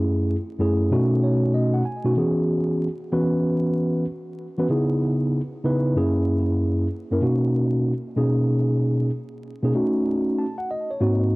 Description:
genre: hip hop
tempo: 95 BPM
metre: 4/4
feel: swing 64% on 16ths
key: B major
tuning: A4 = 441 Hz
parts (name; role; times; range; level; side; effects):
- mellow tine electric piano; solo; 0.0-11.4 s; F#2 to A5; -20 LUFS; equal; fast stereo tremolo, cassette tape, tape echo
room: moderate studio reverb, RT60 0.6 s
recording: home recording on cassette, vinyl crackle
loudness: -20 LUFS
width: side -23 dB against mid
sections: 0.0-11.4 A section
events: tine electric piano fill 0.9-2.2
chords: 0.0 F#m7; 0.9 B7; 2.2 E6; 4.7 C#m7; 6.0 F#7; 7.2 Bmaj7; 9.8 D#m7b5

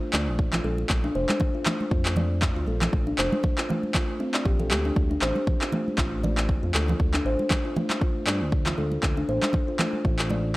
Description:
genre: afro house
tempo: 118 BPM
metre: 4/4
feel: swing 56% on 16ths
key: D minor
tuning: A4 = 440 Hz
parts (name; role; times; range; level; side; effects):
- kalimba; arpeggios; 0.1-10.4 s; A3 to D5; -28 LUFS; equal; sidechain pumping, tape echo
- smooth synth bass; bass; 0.1-10.6 s; F1 to G2; -28 LUFS; equal; sidechain pumping
- electronic handclaps; drums; 0.1-10.3 s; none; -29 LUFS; equal; overdrive
- congas; percussion; 0.1-10.4 s; none; -31 LUFS; right 2 dB; none
- electronic kick drum; drums; 0.4-10.2 s; none; -26 LUFS; equal; overdrive
room: little or no reverb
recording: dry, gritty hardware recording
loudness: -22 LUFS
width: side -19 dB against mid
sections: 0.0-10.6 A section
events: none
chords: 0.0 Bbmaj7; 5.0 Dm

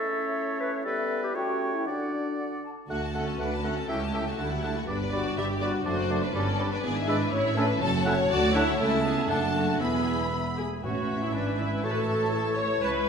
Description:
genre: quick classical-period movement for symphony orchestra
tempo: 121 BPM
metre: 2/4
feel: straight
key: D major, A major from 6.8 s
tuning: A4 = 440 Hz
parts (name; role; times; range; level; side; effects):
- clear oboe; second line; 0.0-13.1 s; B4 to F#5; -35 LUFS; right 2 dB; none
- small flute group; second line; 0.0-13.1 s; D5 to C#6; -38 LUFS; equal; none
- warm clarinet; second line; 0.0-13.1 s; B3 to B4; -35 LUFS; left 2 dB; none
- mellow bassoon; accompaniment; 0.0-13.1 s; D3 to A3; -36 LUFS; right 5 dB; none
- mellow French horn section; sustained chords; 0.0-13.1 s; G3 to C#5; -34 LUFS; left 4 dB; none
- rich studio violin section; melody; 2.9-13.1 s; B4 to B5; -37 LUFS; left 5 dB; none
- warm studio violin section; second line; 2.9-13.1 s; E4 to E5; -33 LUFS; left 2 dB; none
- rich chamber viola section; accompaniment; 2.9-13.1 s; G3 to C#5; -32 LUFS; equal; none
- dark chamber cello section; bass; 2.9-13.1 s; C#2 to A2; -33 LUFS; right 2 dB; none
- rich chamber double bass section; bass; 2.9-13.1 s; E1 to D2; -34 LUFS; right 3 dB; none
- timpani; percussion; 10.8-11.3 s; A2; -40 LUFS; left 1 dB; none
room: wet scoring stage reverb, RT60 1.9 s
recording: minimal, uncompressed stereo recording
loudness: -25 LUFS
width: side -6 dB against mid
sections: 0.0-2.9 A section; 2.9-10.8 B section; 10.8-13.1 A section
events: none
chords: 0.0 A; 0.9 Em/G; 1.4 A7; 1.9 D; 3.9 A7/C#; 4.4 D; 4.9 G; 5.9 D7/F#; 6.3 G; 6.8 E7/G#; 7.3 A; 7.8 F#m; 8.3 D; 8.8 A/C#; 9.3 D/F#; 9.8 E; 10.8 A; 11.3 E7/G#; 11.8 A

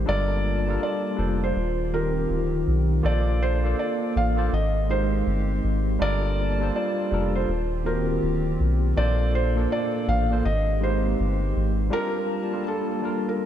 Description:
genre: lo-fi hip hop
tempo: 81 BPM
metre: 4/4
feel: swing 64% on 16ths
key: unclear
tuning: A4 = 440 Hz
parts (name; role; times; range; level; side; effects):
- felt-muted upright piano; melody; 0.0-13.5 s; A4 to F5; -28 LUFS; right 2 dB; low-pass filter, ping-pong delay
- barky tine electric piano; accompaniment; 0.0-13.4 s; Bb2 to D5; -28 LUFS; left 1 dB; fast stereo tremolo, cassette tape, low-pass filter
- hollow soft pad; sustained chords; 0.0-13.5 s; Eb3 to A5; -30 LUFS; equal; chorus, low-pass filter
- soft dub sub bass; bass; 0.0-11.9 s; D1 to Cb2; -24 LUFS; equal; none
room: moderate church reverb, RT60 3.7 s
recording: dreamy mix soaked in reverb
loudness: -22 LUFS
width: side -10 dB against mid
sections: 0.0-13.5 A section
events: break 11.9-13.5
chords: 0.1 Gm9; 1.6 Eb69; 3.0 Bbmaj9; 4.5 Abmaj7; 6.0 Gm9; 7.5 Eb69; 9.0 Bbmaj9; 10.4 Abmaj7; 11.9 Gm9

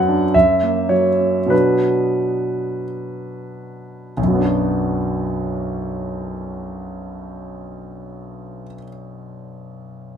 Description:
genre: classical, romantic character piece for solo piano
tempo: 43-57 BPM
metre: 2/4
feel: rubato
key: B minor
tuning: A4 = 440 Hz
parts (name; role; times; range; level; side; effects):
- warm concert grand piano; solo; 0.0-10.2 s; B1 to F#5; -19 LUFS; right 1 dB; none
room: light reverb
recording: minimal, uncompressed stereo recording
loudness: -16 LUFS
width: side -8 dB against mid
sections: 0.0-4.2 A section; 4.2-9.3 B section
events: slowing down 0.0-4.2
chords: 0.3 F#7; 1.5 Bm

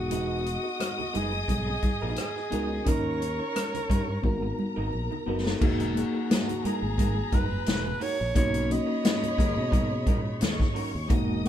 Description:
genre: lush 1970s-style soul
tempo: 87 BPM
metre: 4/4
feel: swing 54% on 16ths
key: unclear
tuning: A4 = 441 Hz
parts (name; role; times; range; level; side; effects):
- bright alto saxophone; melody; 0.0-11.5 s; F#4 to D#5; -33 LUFS; right 2 dB; none
- warm symphonic string section; second line; 0.0-11.5 s; G#4 to D#6; -36 LUFS; left 1 dB; none
- mellow reed electric piano; accompaniment; 0.0-11.5 s; G#3 to A#4; -32 LUFS; left 2 dB; fast tremolo
- fingered electric bass; bass; 0.0-11.5 s; E1 to B2; -32 LUFS; equal; none
- electric guitar through a small old amp; riff; 0.1-11.4 s; F#3 to C#5; -37 LUFS; right 4 dB; none
- vintage drum kit; drums; 0.1-11.5 s; crash cymbal, hi-hat, kick drum, rim click, snare drum; -28 LUFS; equal; none
- congas; percussion; 0.1-11.5 s; none; -35 LUFS; right 1 dB; none
- vibraphone with medium hard mallets; texture; 5.9-11.5 s; F#4 to A#4; -44 LUFS; equal; none
room: moderate stone room reverb, RT60 1.0 s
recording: band playing live in one room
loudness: -25 LUFS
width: side -10 dB against mid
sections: 0.0-5.6 A section; 5.6-11.5 B section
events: drum fill 4.2-5.6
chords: 0.0 Emaj9; 2.9 D#7; 4.2 G#m9; 5.6 Emaj9#11; 8.4 Bmaj9

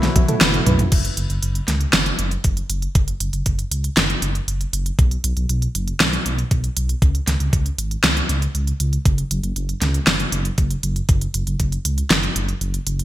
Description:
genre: synthwave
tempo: 118 BPM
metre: 4/4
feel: straight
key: F# minor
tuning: A4 = 440 Hz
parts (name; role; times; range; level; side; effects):
- warm electric grand piano; melody; 0.0-0.8 s; E4; -34 LUFS; left 2 dB; digital delay
- soft synth bell; second line; 0.0-0.8 s; none; barely audible; none; none
- warm analog pad; sustained chords; 0.0-0.9 s; E3 to F#4; -31 LUFS; left 2 dB; chorus, vintage 12-bit sampler grit, sidechain pumping
- thumb-piano-like synth pluck; arpeggios; 0.0-0.8 s; F#3 to F#4; -30 LUFS; left 1 dB; none
- mellow FM electric piano; stabs; 0.0-0.8 s; B2 to B4; -26 LUFS; right 4 dB; chorus, ping-pong delay
- dark detuned saw bass; bass; 0.0-13.0 s; F#1 to C#2; -21 LUFS; equal; none
- pop drum kit; drums; 0.0-13.0 s; crash cymbal, hi-hat, snare drum, toms; -20 LUFS; equal; gated reverb
- electronic kick drum; drums; 0.2-11.7 s; none; -18 LUFS; equal; none
room: light reverb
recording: bright 1980s-style digital production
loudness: -17 LUFS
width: side -14 dB against mid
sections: 0.9-13.0 A section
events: drum fill 0.0-0.9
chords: 0.0 B7sus4; 0.9 F#5; 5.0 B5; 7.0 C#5; 9.1 F#5

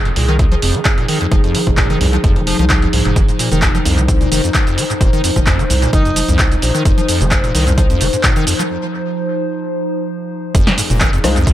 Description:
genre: acid house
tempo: 130 BPM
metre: 4/4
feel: swing 53% on 16ths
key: F minor pentatonic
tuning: A4 = 440 Hz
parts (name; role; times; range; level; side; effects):
- warbly tape-like pad; sustained chords; 0.0-11.5 s; F3 to C5; -20 LUFS; equal; chorus, built-in reverb, sidechain pumping
- round analog bass; bass; 0.0-11.5 s; F1 to C2; -17 LUFS; equal; sidechain pumping
- acid bass, square; riff; 0.1-11.5 s; F2 to F3; -19 LUFS; equal; analog chorus, sidechain pumping, tape echo
- punchy analog drum machine; drums; 0.1-11.5 s; handclaps, hi-hat, rim click, shaker, snare drum; -19 LUFS; right 1 dB; analog delay
- electronic kick drum; drums; 0.4-11.5 s; none; -15 LUFS; equal; none
- clear alto saxophone; melody; 5.9-6.3 s; Eb4; -27 LUFS; equal; dub echo
- dark concert grand piano; stabs; 11.2-11.3 s; Ab3 to C5; -18 LUFS; left 4 dB; analog delay
room: light reverb, digital ambience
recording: echo-heavy mix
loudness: -12 LUFS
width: side -13 dB against mid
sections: 0.0-10.5 A section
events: break 8.7-10.5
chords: 0.0 Fm7

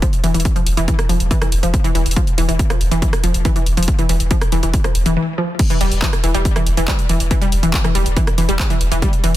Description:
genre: driving peak-time techno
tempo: 140 BPM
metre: 4/4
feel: straight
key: E phrygian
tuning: A4 = 440 Hz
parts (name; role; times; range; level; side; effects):
- wide unison pluck; riff; 0.0-9.3 s; E3 to G3; -20 LUFS; equal; sidechain pumping, ping-pong delay
- saturated sub bass; bass; 0.0-9.4 s; E1; -18 LUFS; equal; overdrive, sidechain pumping, low-pass filter
- electronic kick drum; drums; 0.0-9.1 s; none; -17 LUFS; equal; overdrive, studio reverb
- techno drum kit; drums; 0.0-9.4 s; crash cymbal, handclaps, hi-hat, rim click; -24 LUFS; equal; overdrive, studio reverb
room: little or no reverb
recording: dense, heavily limited modern master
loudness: -14 LUFS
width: side -14 dB against mid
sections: 0.0-5.6 A section; 5.6-9.4 B section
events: break 5.2-5.6; drop 5.6-9.4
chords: none

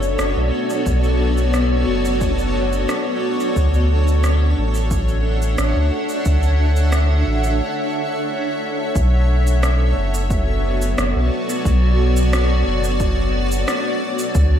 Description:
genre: ambient dub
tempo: 89 BPM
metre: 4/4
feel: straight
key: B minor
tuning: A4 = 440 Hz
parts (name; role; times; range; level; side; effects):
- granular cloud pad; sustained chords; 0.0-14.6 s; B3 to F#5; -21 LUFS; equal; built-in reverb
- warm sub bass; bass; 0.0-14.6 s; F#1 to D2; -17 LUFS; equal; tube saturation
- electronic shaker and rim click; drums; 0.0-14.5 s; none; -28 LUFS; right 1 dB; overdrive, dub echo
- wind-like tuned noise texture; texture; 0.0-7.6 s; D4; -30 LUFS; equal; none
- electronic kick drum; drums; 0.9-14.5 s; none; -22 LUFS; equal; overdrive
room: light reverb, digital ambience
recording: none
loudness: -16 LUFS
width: side -9 dB against mid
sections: 0.0-9.0 A section; 9.0-14.6 B section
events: break 7.6-9.0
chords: 0.0 Bm7; 3.6 Dmaj7; 9.0 Bm7

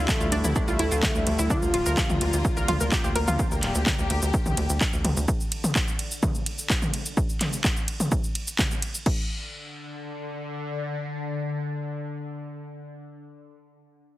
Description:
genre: melodic techno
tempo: 127 BPM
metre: 4/4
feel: straight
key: unclear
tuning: A4 = 439 Hz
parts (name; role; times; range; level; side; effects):
- warm studio string section; sustained chords; 0.0-5.3 s; D3 to G4; -33 LUFS; left 2 dB; sidechain pumping
- analog pluck; arpeggios; 0.0-3.4 s; D4 to Bb5; -30 LUFS; equal; chorus, sidechain pumping, dub echo
- tight sequencer bass; bass; 0.0-5.3 s; D1 to D2; -27 LUFS; equal; sidechain pumping
- bowed-like drone; drone; 0.0-12.9 s; D3; -35 LUFS; left 2 dB; built-in reverb, phaser, sidechain pumping
- fat analog lead; melody; 0.1-2.4 s; A3 to F4; -29 LUFS; equal; chorus, sidechain pumping, digital delay
- electronic kick drum; drums; 0.1-9.2 s; none; -26 LUFS; equal; none
- house drum kit; drums; 0.1-9.2 s; crash cymbal, handclaps, hi-hat, ride cymbal, shaker, toms; -28 LUFS; equal; overdrive, sidechain pumping on toms, sidechain pumping on perc, sidechain pumping on hats, sidechain pumping on cymbals
room: light reverb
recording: heavily compressed radio sound, multiband compression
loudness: -23 LUFS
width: side -16 dB against mid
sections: 0.0-9.1 A section; 9.1-12.8 B section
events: drop 0.0-9.1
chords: 0.0 Dmadd9; 1.5 Gm7/D; 9.1 N.C.

